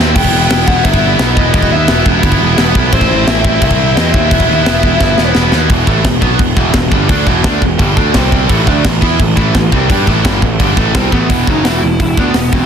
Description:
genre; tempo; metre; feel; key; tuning
heavy metal; 172 BPM; 4/4; straight; E minor; A4 = 439 Hz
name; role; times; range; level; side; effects
tight distorted guitar; riff; 0.0-12.7 s; E2 to G4; -14 LUFS; right 2 dB; distortion
fuzz picked electric bass; bass; 0.0-12.7 s; E1 to G2; -14 LUFS; equal; overdrive
dark smooth lead guitar; melody; 0.2-5.3, 11.1-12.7 s; B3 to G5; -16 LUFS; left 2 dB; overdrive, digital delay
tight metal drum kit; drums; 0.2-12.6 s; crash cymbal, hi-hat, kick drum, snare drum; -13 LUFS; equal; none
room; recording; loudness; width
little or no reverb; dense, heavily limited modern master; -9 LUFS; side -7 dB against mid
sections
0.0-5.7 A section; 5.7-11.3 B section; 11.3-12.7 C section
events
drum fill 0.0, 5.0-5.7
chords
0.2 Em; 2.9 Am; 4.3 E5; 5.7 Em; 8.1 C5; 8.5 A5; 11.3 E5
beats
| 0.16 0.50 0.85 1.20 | 1.54 1.89 2.23 2.58 | 2.93 3.27 3.62 3.96 | 4.31 4.66 5.01 5.35 | 5.70 6.05 6.40 6.75 | 7.09 7.44 7.79 8.14 | 8.49 8.84 9.19 9.54 | 9.89 10.24 10.59 10.94 | 11.29 11.64 11.99 12.35

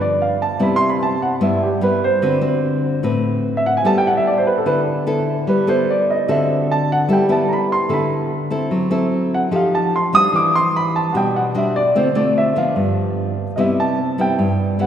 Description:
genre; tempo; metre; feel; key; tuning
bossa nova; 148 BPM; 4/4; straight; G major; A4 = 439 Hz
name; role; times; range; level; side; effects
warm baby grand piano; melody; 0.0-14.9 s; G4 to Eb6; -18 LUFS; right 2 dB; none
nylon-string guitar; accompaniment; 0.0-14.9 s; G2 to B4; -18 LUFS; left 1 dB; none
room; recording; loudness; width
wet church reverb, RT60 3.6 s; recorded in a church or concert hall; -15 LUFS; side -9 dB against mid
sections
0.0-7.1 A section; 7.1-14.9 A section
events
grand piano solo 0.0-14.9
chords
0.0 G7; 0.6 Cmaj7; 2.2 D6; 3.8 G69; 6.3 D7; 7.1 G69; 8.7 F#m7b5; 9.5 F9; 10.3 Em9; 12.0 Dm7; 12.8 G7; 13.6 Cmaj7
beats
0.20 | 0.60 1.01 1.42 1.82 | 2.23 2.63 3.04 3.44 | 3.85 4.25 4.66 5.06 | 5.47 5.88 6.28 6.68 | 7.09 7.50 7.90 8.31 | 8.71 9.12 9.52 9.93 | 10.33 10.74 11.14 11.55 | 11.96 12.36 12.77 13.17 | 13.58 13.98 14.39 14.79

